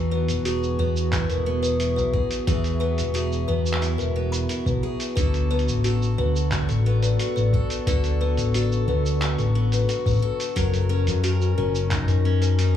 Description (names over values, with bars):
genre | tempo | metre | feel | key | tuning
folktronica | 89 BPM | 4/4 | straight | unclear | A4 = 440 Hz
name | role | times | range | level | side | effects
warbly tape-like pad | sustained chords | 0.0-12.8 s | B3 to A#5 | -32 LUFS | equal | chorus, built-in reverb, vintage 12-bit sampler grit
picked steel-string acoustic guitar | arpeggios | 0.0-12.8 s | D3 to A#4 | -30 LUFS | right 2 dB | tape echo
fingered electric bass | bass | 0.0-12.8 s | E1 to F#2 | -22 LUFS | equal | none
music box | second line | 0.1-12.6 s | F#4 to B5 | -29 LUFS | left 6 dB | tape echo
lo-fi sampler-style drum kit | drums | 0.3-12.7 s | cabasa, handclaps, hi-hat | -32 LUFS | right 1 dB | overdrive
electronic kick drum | drums | 1.1-12.0 s | none | -26 LUFS | equal | overdrive
room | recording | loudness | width
little or no reverb | vinyl crackle, small room reverb | -20 LUFS | side -10 dB against mid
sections
0.0-12.8 A section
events
none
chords
0.0 Eadd9; 5.2 D6; 10.6 F#6